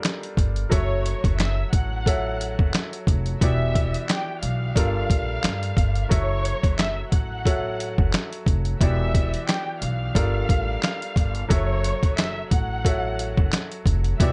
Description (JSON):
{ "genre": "hip hop, boom-bap hip-hop", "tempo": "89 BPM", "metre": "4/4", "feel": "swing 54% on 16ths", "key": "F# phrygian", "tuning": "A4 = 439 Hz", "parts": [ { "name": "bright upright piano", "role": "accompaniment", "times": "0.0-14.3 s", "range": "E3 to E5", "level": "-32 LUFS", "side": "equal", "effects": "high-pass filter, low-pass filter" }, { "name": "trip hop sampler-style drum kit", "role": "drums", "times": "0.0-14.3 s", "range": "handclaps, hi-hat, kick drum, snare drum", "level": "-24 LUFS", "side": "equal", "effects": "vintage 12-bit sampler grit" }, { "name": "upright bass", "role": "bass", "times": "0.4-14.3 s", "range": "E1 to G2", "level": "-28 LUFS", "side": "equal", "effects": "none" }, { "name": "warm studio violin section", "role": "melody", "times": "0.7-14.3 s", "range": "G4 to F#6", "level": "-33 LUFS", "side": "equal", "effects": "high-pass filter, low-pass filter, delay" } ], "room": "little or no reverb", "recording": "nothing above 10.8 kHz", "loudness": "-23 LUFS", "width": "mono", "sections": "0.0-14.3 A section", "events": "break 0.0-0.7", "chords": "0.0 Gm7; 0.7 F#m7; 3.4 Em7; 4.8 Gm7; 6.1 F#m7; 8.8 Em7; 10.2 Gm7; 11.5 F#m7" }